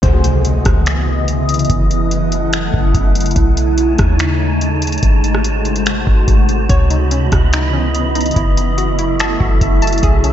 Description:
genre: hip hop, atmospheric cloud-rap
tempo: 144 BPM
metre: 4/4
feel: half-time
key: C# minor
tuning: A4 = 440 Hz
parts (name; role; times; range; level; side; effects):
- shimmering ambient pad; sustained chords; 0.0-10.3 s; C#3 to A3; -18 LUFS; equal; chorus, built-in reverb, phaser
- hollow square pluck; arpeggios; 0.0, 6.7-10.3 s; C#4 to A5; -23 LUFS; left 2 dB; chorus, low-pass filter, tape echo
- clean 808-style bass; bass; 0.0-10.3 s; F#1 to D#2; -16 LUFS; equal; none
- booming analog drum machine; drums; 0.0-10.3 s; finger snaps, hi-hat, kick drum, rim click; -17 LUFS; equal; none
- swell and impact; sound effects; 0.0-1.7 s; none; -24 LUFS; equal; none
- wind-like tuned noise texture; texture; 0.0-10.3 s; B3 to B5; -24 LUFS; right 1 dB; built-in reverb, wide subtle chorus
room: moderate lush hall reverb, RT60 1.7 s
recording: dreamy mix soaked in reverb, tape stop, nothing above 7.7 kHz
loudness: -12 LUFS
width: side -10 dB against mid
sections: 0.0-10.3 A section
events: impact 0.0-1.7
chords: 0.0 C#m9; 1.7 F#m7; 3.4 B13; 5.0 G#7b9; 6.7 C#m9; 8.4 F#m7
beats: | 0.03 0.45 0.86 1.28 | 1.70 2.11 2.53 2.94 | 3.36 3.78 4.20 4.61 | 5.03 5.45 5.86 6.28 | 6.70 7.11 7.53 7.95 | 8.36 8.78 9.20 9.61 | 10.03

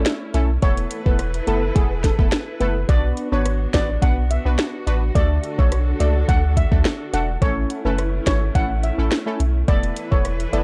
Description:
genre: dancehall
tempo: 106 BPM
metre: 4/4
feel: straight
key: unclear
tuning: A4 = 443 Hz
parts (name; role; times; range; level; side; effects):
- synth brass stab; accompaniment; 0.0-10.6 s; A3 to B4; -29 LUFS; equal; chorus, sidechain pumping
- muted studio string section; sustained chords; 0.0-10.6 s; D3 to B4; -34 LUFS; equal; sidechain pumping
- punchy sub bass; bass; 0.0-10.6 s; E1 to D2; -23 LUFS; equal; none
- afro-pop drum kit; drums; 0.1-10.6 s; hi-hat, kick drum, rim click, snare drum; -22 LUFS; equal; vintage 12-bit sampler grit
- steel pan; melody; 0.6-10.6 s; G#4 to F#5; -29 LUFS; equal; none
room: digital ambience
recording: dark, warm production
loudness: -20 LUFS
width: mono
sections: 0.0-10.6 A section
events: none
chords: 0.0 A; 0.6 Esus4; 2.9 Bm; 5.2 D; 7.4 A; 9.7 Esus4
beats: 0.06 | 0.62 1.19 1.76 2.32 | 2.89 3.46 4.02 4.59 | 5.15 5.72 6.29 6.85 | 7.42 7.98 8.55 9.12 | 9.68 10.25

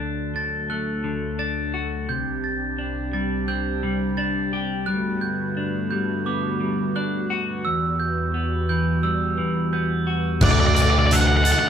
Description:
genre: post-rock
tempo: 86 BPM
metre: 4/4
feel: straight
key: unclear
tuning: A4 = 439 Hz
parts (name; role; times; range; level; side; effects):
- brassy analog pad; sustained chords; 0.0-11.7 s; C2 to A5; -28 LUFS; equal; chorus
- clean electric guitar; arpeggios; 0.0-11.7 s; E2 to G4; -26 LUFS; left 2 dB; phaser
- glockenspiel with soft plastic mallets; arpeggios; 0.0-11.7 s; D6 to A6; -28 LUFS; right 3 dB; none
- octave-fuzz lead guitar; melody; 10.4-11.7 s; D5 to F#5; -20 LUFS; right 1 dB; distortion
- growling picked electric bass; bass; 10.4-11.5 s; D2; -19 LUFS; equal; overdrive
- big rock drum kit; drums; 10.4-11.6 s; crash cymbal, hi-hat, kick drum; -20 LUFS; equal; none
room: wet studio ambience, RT60 0.4 s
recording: band playing live in one room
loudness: -20 LUFS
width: side -8 dB against mid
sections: 0.0-10.4 A section; 10.4-11.7 B section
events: none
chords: 0.0 D; 2.1 Csus2; 4.9 Gmaj7; 7.6 Emadd9; 10.4 D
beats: 0.01 0.70 1.40 | 2.09 2.78 3.48 4.17 | 4.87 5.56 6.26 6.95 | 7.64 8.34 9.03 9.73 | 10.42 11.11

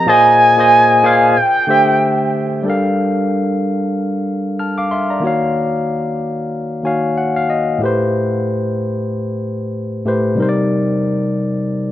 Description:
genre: R&B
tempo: 93 BPM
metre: 4/4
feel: swing 58% on 16ths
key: unclear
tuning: A4 = 440 Hz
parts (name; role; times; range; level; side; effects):
- gliding portamento lead; melody; 0.0-2.3 s; G5 to Ab5; -11 LUFS; right 1 dB; chorus
- barky tine electric piano; accompaniment; 0.0-11.9 s; A2 to F6; -16 LUFS; left 1 dB; overdrive
room: moderate plate reverb, RT60 3.5 s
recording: none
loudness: -13 LUFS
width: side -12 dB against mid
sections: 0.0-2.6 A section; 2.6-11.9 B section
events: tine electric piano fill 6.5-7.8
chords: 0.1 Bb9sus4; 1.3 D9sus4; 2.6 Gm9; 5.2 Ebm9; 7.8 Am9; 10.4 Cm9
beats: | 0.06 0.70 1.35 1.99 | 2.64 3.28 3.93 4.57 | 5.22 5.86 6.51 7.15 | 7.80 8.44 9.09 9.73 | 10.38 11.03 11.67

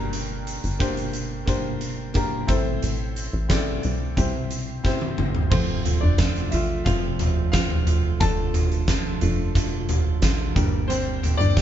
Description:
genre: piano-driven pop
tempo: 89 BPM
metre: 4/4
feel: straight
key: F major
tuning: A4 = 439 Hz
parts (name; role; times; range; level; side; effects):
- clear upright piano; accompaniment; 0.0-11.6 s; G2 to A5; -28 LUFS; left 2 dB; none
- plucky analog bass; bass; 0.0-11.6 s; F1 to C2; -27 LUFS; equal; none
- huge arena drum kit; drums; 0.1-11.6 s; crash cymbal, hi-hat, kick drum, snare drum, toms; -23 LUFS; right 1 dB; none
- direct-recorded clean electric guitar; riff; 5.5-11.6 s; F2 to G4; -31 LUFS; right 6 dB; none
room: moderate studio reverb, RT60 0.6 s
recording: band playing live in one room, nothing above 7.6 kHz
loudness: -21 LUFS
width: side -10 dB against mid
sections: 0.0-5.5 A section; 5.5-11.6 B section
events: drum fill 4.8-5.5; upright piano solo 5.5-11.6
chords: 0.0 Gm; 2.5 Am; 4.2 C; 5.5 F; 8.2 Dm/F; 10.6 Gm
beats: | 0.13 0.81 1.48 2.15 | 2.82 3.50 4.17 4.84 | 5.52 6.19 6.86 7.54 | 8.21 8.88 9.55 10.23 | 10.90 11.57

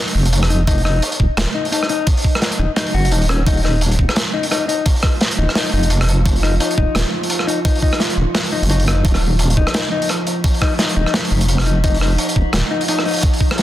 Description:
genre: half-time drum and bass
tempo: 172 BPM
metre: 4/4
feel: swing 58% on 16ths, half-time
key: Eb minor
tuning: A4 = 440 Hz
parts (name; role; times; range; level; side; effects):
- deep soft wobble bass; bass; 0.1-12.6 s; Eb1 to Gb1; -16 LUFS; equal; chorus
- crunchy breakbeat drum kit; drums; 0.1-13.6 s; hi-hat, rim click, snare drum; -20 LUFS; right 1 dB; none
- mellow electric guitar; arpeggios; 0.5-13.2 s; Db4 to Gb4; -22 LUFS; left 5 dB; tape echo
- electronic kick drum; drums; 0.7-13.5 s; none; -16 LUFS; equal; none
- metallic inharmonic drone; texture; 4.7-13.6 s; F3 to F4; -26 LUFS; right 1 dB; chorus, built-in reverb
room: light reverb, small room ambience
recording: dense, heavily limited modern master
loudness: -14 LUFS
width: side -13 dB against mid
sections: 0.0-13.6 A section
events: none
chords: 0.0 Ebsus2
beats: 0.33 | 0.68 1.02 1.37 1.72 | 2.07 2.42 2.77 3.12 | 3.47 3.81 4.16 4.51 | 4.86 5.21 5.56 5.91 | 6.26 6.61 6.95 7.30 | 7.65 8.00 8.35 8.70 | 9.05 9.40 9.74 10.09 | 10.44 10.79 11.14 11.49 | 11.84 12.19 12.54 12.88 | 13.23 13.58

